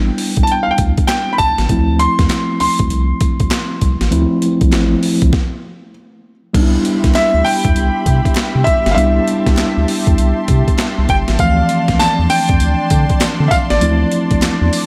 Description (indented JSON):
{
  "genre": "R&B, new jack swing",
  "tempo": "99 BPM",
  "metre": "4/4",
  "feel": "swing 64% on 16ths",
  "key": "C major",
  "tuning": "A4 = 440 Hz",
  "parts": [
    { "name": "clear baby grand piano", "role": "melody", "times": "0.0-14.9 s", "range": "D5 to C6", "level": "-20 LUFS", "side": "equal", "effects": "none" },
    { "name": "mellow tine electric piano", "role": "accompaniment", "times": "0.0-14.9 s", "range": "E3 to E4", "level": "-20 LUFS", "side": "equal", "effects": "none" },
    { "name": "round analog bass", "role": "bass", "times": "0.0-14.7 s", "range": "G1 to D3", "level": "-18 LUFS", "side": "equal", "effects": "none" },
    { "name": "boom bap sampler-style drum kit", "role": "drums", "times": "0.2-14.9 s", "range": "crash cymbal, handclaps, hi-hat, kick drum, snare drum, tambourine", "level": "-20 LUFS", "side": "equal", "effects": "overdrive" },
    { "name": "group handclap", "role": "percussion", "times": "1.1-14.6 s", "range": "none", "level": "-34 LUFS", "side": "equal", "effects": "none" },
    { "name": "lush unison pad", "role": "sustained chords", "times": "6.5-14.9 s", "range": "D4 to C6", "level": "-26 LUFS", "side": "equal", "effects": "chorus" }
  ],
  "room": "light reverb",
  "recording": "none",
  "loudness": "-14 LUFS",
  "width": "mono",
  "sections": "0.0-6.5 A section; 6.5-14.9 B section",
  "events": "stop 5.3-6.5",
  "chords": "0.0 Cmaj7 (rootless); 1.7 Dm7; 6.5 Cmaj7; 11.4 Dm7"
}